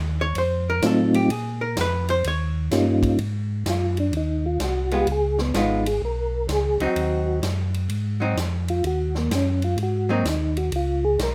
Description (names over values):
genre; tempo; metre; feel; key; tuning
soul jazz organ trio; 127 BPM; 4/4; swing 66% on 8ths; Ab mixolydian; A4 = 440 Hz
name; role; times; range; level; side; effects
mellow tonewheel organ; bass; 0.0-11.3 s; Ab1 to Bb2; -27 LUFS; equal; slow rotary speaker
archtop guitar, miked and amplified; accompaniment; 0.2-10.2 s; Gb3 to Db5; -27 LUFS; equal; none
swinging big-band drum kit; drums; 0.3-11.3 s; hi-hat, kick drum, ride cymbal, snare drum; -34 LUFS; equal; none
percussive tonewheel organ; melody; 0.8-11.3 s; Gb3 to Bb4; -25 LUFS; equal; slow rotary speaker, chorus vibrato
room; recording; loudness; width
light reverb; none; -23 LUFS; mono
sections
0.0-3.2 A section; 3.2-11.3 A section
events
hollow-body jazz guitar solo 0.0-3.2; tonewheel organ solo 3.2-11.3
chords
0.4 F7b9; 1.3 Bb5; 2.2 Eb7; 3.2 Ab7; 5.1 Db7; 7.0 Ab7; 8.8 Ebm; 9.8 Ab7; 10.7 Db7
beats
0.35 0.82 | 1.30 1.77 2.24 2.71 | 3.19 3.66 4.13 4.60 | 5.07 5.54 6.02 6.49 | 6.96 7.43 7.90 8.37 | 8.84 9.31 9.78 10.25 | 10.72 11.20